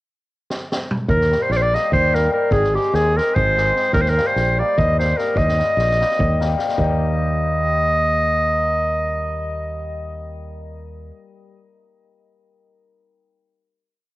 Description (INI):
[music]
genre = balkan folk, Balkan wedding band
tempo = 295 BPM (eighths)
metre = 7/8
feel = straight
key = Eb major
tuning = A4 = 440 Hz
[part]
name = street-band drum kit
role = percussion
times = 0.5-7.0 s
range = kick drum, snare drum, toms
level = -25 LUFS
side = equal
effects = cassette tape
[part]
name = clear clarinet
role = melody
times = 1.1-10.4 s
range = G4 to Eb5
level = -19 LUFS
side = equal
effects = tape echo
[part]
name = fingered electric bass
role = bass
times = 1.1-11.1 s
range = Ab1 to Eb2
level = -22 LUFS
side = equal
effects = none
[part]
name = cimbalom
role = accompaniment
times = 1.3-11.5 s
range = G3 to Ab4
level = -27 LUFS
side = left 6 dB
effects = cassette tape
[sound]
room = moderate spring reverb, RT60 1.7 s, small room ambience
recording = home recording on cassette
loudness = -16 LUFS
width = side -18 dB against mid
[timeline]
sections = 0.0-1.1 pickup bar; 1.1-6.8 A section; 6.8-9.6 final chord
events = drum fill 0.5-1.1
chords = 0.0 N.C.; 1.1 Eb; 2.5 Ab; 3.9 Eb